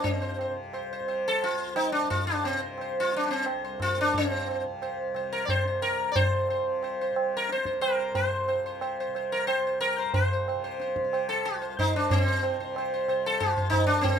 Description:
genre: indian classical, Hindustani.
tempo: 180 BPM.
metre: 3/4.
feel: straight.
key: unclear.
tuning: A4 = 440 Hz.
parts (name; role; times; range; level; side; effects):
sitar; melody; 0.0-14.2 s; C4 to D5; -26 LUFS; equal; none.
tanpura; drone; 0.0-14.2 s; C2 to C3; -38 LUFS; left 2 dB; none.
tabla; percussion; 0.0-14.2 s; none; -31 LUFS; right 2 dB; none.
room: wet small room ambience, RT60 0.5 s.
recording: minimal, uncompressed stereo recording.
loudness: -25 LUFS.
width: side -8 dB against mid.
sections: 0.0-4.1 A section; 4.1-12.1 B section; 12.1-14.2 C section.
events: speeding up 0.0-14.2.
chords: none.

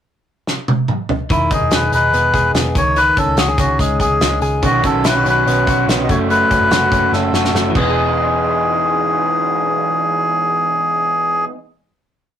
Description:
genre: jangly indie pop.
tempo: 144 BPM.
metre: 4/4.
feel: straight.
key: E major.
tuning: A4 = 442 Hz.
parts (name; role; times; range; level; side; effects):
loose indie drum kit; drums; 0.5-7.9 s; crash cymbal, hi-hat, kick drum, snare drum, toms; -19 LUFS; equal; none.
melodica; melody; 1.3-11.4 s; E4 to D#5; -16 LUFS; left 1 dB; none.
direct-recorded clean electric guitar; arpeggios; 1.3-11.6 s; D#3 to G#4; -20 LUFS; left 3 dB; none.
vintage muted picked electric bass; bass; 1.3-11.5 s; E1 to C#2; -21 LUFS; right 1 dB; none.
raw garage guitar; accompaniment; 4.6-11.6 s; B2 to F#4; -21 LUFS; right 5 dB; overdrive.
room: moderate small room reverb, RT60 0.6 s.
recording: rough rehearsal-room recording, tube saturation.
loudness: -13 LUFS.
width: side -9 dB against mid.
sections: 0.0-1.3 pickup bar; 1.3-8.0 verse; 8.0-11.3 final hit.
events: drum fill 0.5-1.3, 7.1-8.0.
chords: 0.0 N.C.; 1.3 Emaj7; 2.8 C#sus2; 4.6 Badd9; 6.1 F#m; 7.8 Emaj7.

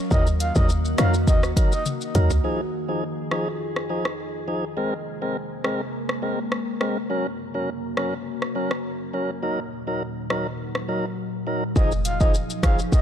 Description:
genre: dancehall.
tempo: 103 BPM.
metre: 4/4.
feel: straight.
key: F phrygian.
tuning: A4 = 440 Hz.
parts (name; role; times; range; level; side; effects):
glassy FM pad; sustained chords; 0.0-13.0 s; Eb2 to Ab4; -29 LUFS; equal; ensemble chorus, built-in reverb, sidechain pumping.
breathy flute-like synth lead; melody; 0.1-1.8, 11.8-13.0 s; Eb5 to F5; -29 LUFS; equal; chorus, ping-pong delay.
tonewheel organ; accompaniment; 0.1-12.8 s; F3 to Bb4; -28 LUFS; equal; overdrive, stopped rotary speaker, sidechain pumping.
short 808-style bass; bass; 0.1-2.4, 11.8-13.0 s; F1 to F2; -22 LUFS; equal; none.
afro-pop drum kit; drums; 0.1-13.0 s; hi-hat, kick drum, rim click, shaker, toms; -23 LUFS; equal; none.
room: little or no reverb.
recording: dark, warm production.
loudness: -22 LUFS.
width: side -9 dB against mid.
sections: 0.0-2.4 A section; 2.4-11.8 B section; 11.8-13.0 A section.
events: drum fill 1.9-2.4.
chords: 0.1 Ebm; 2.4 Fm7; 4.8 Abadd9; 7.1 Gb; 9.4 Ebm; 11.8 Fm7.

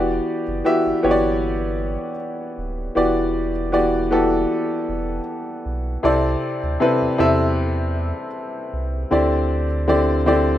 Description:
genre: contemporary R&B.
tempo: 78 BPM.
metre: 4/4.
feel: swing 54% on 16ths.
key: E minor.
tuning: A4 = 440 Hz.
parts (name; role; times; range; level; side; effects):
warm grand piano; accompaniment; 0.0-10.6 s; C3 to E5; -19 LUFS; left 1 dB; none.
warm sub bass; bass; 0.0-10.6 s; D1 to E2; -25 LUFS; right 1 dB; none.
room: small room ambience.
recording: rough home demo mix.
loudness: -18 LUFS.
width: side -12 dB against mid.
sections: 0.0-10.6 A section.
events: none.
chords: 0.0 Em7; 6.0 C69; 9.1 D9sus4.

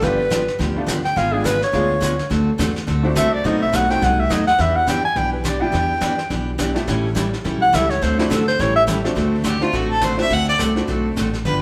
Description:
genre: country, western swing.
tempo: 210 BPM.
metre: 4/4.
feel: swing 59% on 8ths.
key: D mixolydian.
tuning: A4 = 440 Hz.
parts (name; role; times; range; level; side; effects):
bright clarinet; second line; 0.0-8.8 s; E4 to G#5; -21 LUFS; equal; none.
bright upright piano; accompaniment; 0.0-11.1 s; G3 to A4; -28 LUFS; equal; none.
picked steel-string acoustic guitar; accompaniment; 0.0-11.6 s; B2 to A4; -25 LUFS; equal; none.
upright bass; bass; 0.0-11.6 s; G1 to E2; -26 LUFS; equal; none.
vintage brush drum kit; drums; 0.0-11.6 s; brushed snare drum, hi-hat, kick drum, snare drum; -30 LUFS; equal; none.
clear fiddle; melody; 9.5-11.6 s; F4 to F#5; -22 LUFS; equal; none.
room: wet stone room reverb, RT60 1.3 s.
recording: band playing live in one room.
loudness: -19 LUFS.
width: mono.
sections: 0.0-9.2 A section; 9.2-11.6 A section.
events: clarinet solo 0.0-9.2; fiddle solo 9.2-11.6.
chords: 0.0 G9; 1.2 G#dim7; 2.3 D9; 3.4 B7b9; 4.6 Em7; 6.9 A9; 8.0 D9; 8.6 A7; 9.2 D9.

